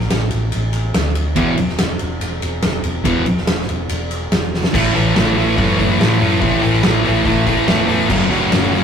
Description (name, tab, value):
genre	garage rock duo or trio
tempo	142 BPM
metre	4/4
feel	straight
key	unclear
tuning	A4 = 444 Hz
part	hollow-body short-scale fingered electric bass	bass	0.0-8.8 s	E1 to A2	-21 LUFS	equal	none
part	oversized low-tuned drum kit	drums	0.0-8.8 s	crash cymbal, hi-hat, kick drum, ride cymbal, snare drum	-19 LUFS	equal	none
part	thick fuzz guitar	riff	1.4-8.8 s	E2 to A3	-15 LUFS	equal	distortion
room	moderate stone room reverb, RT60 1.2 s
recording	rough rehearsal-room recording, tube saturation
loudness	-14 LUFS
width	side -7 dB against mid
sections	0.0-4.7 A section; 4.7-8.8 B section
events	drum fill 4.5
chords	0.0 A5; 1.4 E5; 4.7 A5; 8.1 F#5